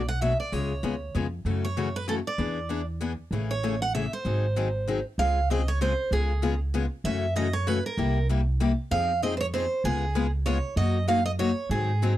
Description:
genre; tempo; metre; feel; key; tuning
acoustic string swing (jazz manouche); 193 BPM; 3/4; swing 58% on 8ths; Db major from 5.2 s; A4 = 440 Hz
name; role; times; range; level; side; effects
picked steel-string acoustic guitar; melody; 0.0-12.2 s; Ab4 to F#5; -29 LUFS; right 3 dB; none
upright bass; bass; 0.0-12.2 s; G#1 to Ab2; -28 LUFS; right 1 dB; none
picked steel-string acoustic guitar; accompaniment; 0.2-12.1 s; B2 to G#4; -29 LUFS; left 5 dB; none
room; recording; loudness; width
light reverb; dry, close 1970s-style studio recording; -24 LUFS; side -13 dB against mid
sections
0.0-5.2 A section; 5.2-12.2 B section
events
none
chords
0.0 Bm7; 0.5 C#7; 1.5 F#m7; 2.4 E7; 3.3 Amaj7; 4.3 G#7; 5.2 Dbmaj7; 6.1 Db7; 7.1 Gbm7; 8.0 C7; 8.9 Fm7; 9.8 Db7; 10.8 Gb6

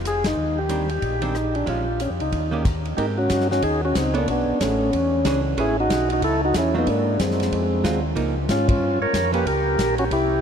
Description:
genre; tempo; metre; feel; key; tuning
soul jazz organ trio; 185 BPM; 4/4; swing 61% on 8ths; unclear; A4 = 439 Hz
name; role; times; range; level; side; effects
mellow tonewheel organ; bass; 0.0-10.4 s; F1 to Ab2; -26 LUFS; equal; chorus vibrato, slow rotary speaker
percussive tonewheel organ; melody; 0.1-10.4 s; Ab3 to Db5; -21 LUFS; equal; slow rotary speaker
warm soul drum kit; drums; 0.1-10.2 s; crash cymbal, hi-hat, kick drum, ride cymbal, rim click, snare drum; -28 LUFS; equal; none
archtop guitar, miked and amplified; accompaniment; 0.7-9.4 s; Eb3 to Db5; -30 LUFS; right 4 dB; none
room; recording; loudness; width
wet huge ambient reverb, RT60 9.1 s; in a vast, echoing space; -19 LUFS; side -7 dB against mid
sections
0.0-3.0 A section; 3.0-10.4 B section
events
band accent 0.2, 8.6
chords
0.4 Eb6; 1.7 Bbm7; 2.3 Eb7; 3.0 Abmaj9; 4.3 Bm9; 4.9 E6; 5.6 Amaj9; 6.9 Ab13; 8.2 Db69; 9.5 Gdim

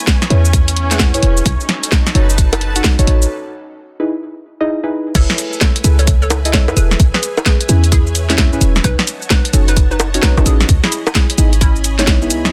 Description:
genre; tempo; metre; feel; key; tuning
UK garage, two-step garage; 130 BPM; 4/4; swing 64% on 16ths; F# dorian; A4 = 439 Hz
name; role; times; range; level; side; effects
soft string machine; sustained chords; 0.0-12.5 s; A3 to B5; -33 LUFS; equal; ensemble chorus, sidechain pumping
clear studio string section; texture; 0.0-3.3 s; E3 to B5; -27 LUFS; equal; sidechain pumping
electronic kick drum; drums; 0.1-12.2 s; none; -16 LUFS; equal; none
garage drum kit; drums; 0.1-12.5 s; bongos, crash cymbal, hi-hat, shaker, snare drum; -19 LUFS; equal; none
deep mellow chord stab; stabs; 0.3-12.5 s; B3 to F#5; -23 LUFS; equal; chorus, cassette tape, tape echo
short 808-style bass; bass; 0.3-12.5 s; E1 to A2; -16 LUFS; equal; none
hollow square pluck; melody; 5.2-12.5 s; C#4 to C#5; -27 LUFS; equal; lush chorus, digital delay
room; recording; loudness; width
little or no reverb; dense, heavily limited modern master; -14 LUFS; mono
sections
0.0-5.2 A section; 5.2-12.5 B section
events
break 3.3-5.2; drop 5.2-12.5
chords
0.0 Amaj7; 1.5 B7; 3.3 Emaj7/D#; 5.2 F#m11 (rootless); 7.0 Amaj7 (rootless); 8.8 B7; 10.7 C#m9

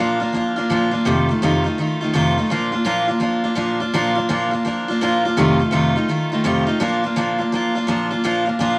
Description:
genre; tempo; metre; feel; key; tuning
rock; 167 BPM; 4/4; swing 64% on 8ths; Bb major; A4 = 440 Hz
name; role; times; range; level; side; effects
picked steel-string acoustic guitar; solo; 0.0-8.8 s; F2 to F4; -19 LUFS; equal; none
room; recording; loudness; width
moderate club reverb, RT60 0.6 s; vinyl crackle; -19 LUFS; mono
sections
0.0-8.2 A section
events
none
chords
0.0 Bb; 1.1 F7; 2.5 Bb; 5.4 F7; 6.8 Bb

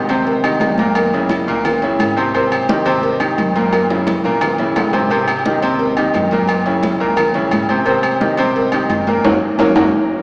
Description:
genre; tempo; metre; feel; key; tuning
latin, salsa; 174 BPM; 4/4; straight; Ab major; A4 = 439 Hz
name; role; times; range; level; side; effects
bright concert grand piano; accompaniment; 0.0-9.9 s; Bb2 to C5; -19 LUFS; equal; none
upright bass; bass; 0.0-9.9 s; Gb1 to Bb2; -28 LUFS; equal; none
agogo bells and timbales; percussion; 0.1-9.8 s; none; -22 LUFS; equal; none
congas; percussion; 0.3-9.8 s; none; -25 LUFS; equal; none
cowbell and bongos; percussion; 0.3-9.8 s; none; -25 LUFS; equal; none
room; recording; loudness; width
wet cathedral reverb, RT60 5.0 s; recorded in a church or concert hall, small speaker sound; -16 LUFS; mono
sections
0.0-10.2 A section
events
drum fill 3.7-5.1, 9.6-10.2; band accent 9.2-10.2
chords
0.0 Abmaj7 (rootless); 1.0 Gb7; 2.3 Abmaj7; 3.7 Gb7; 5.1 Abmaj7; 6.5 Gb7; 7.9 Abmaj7; 9.2 Gb

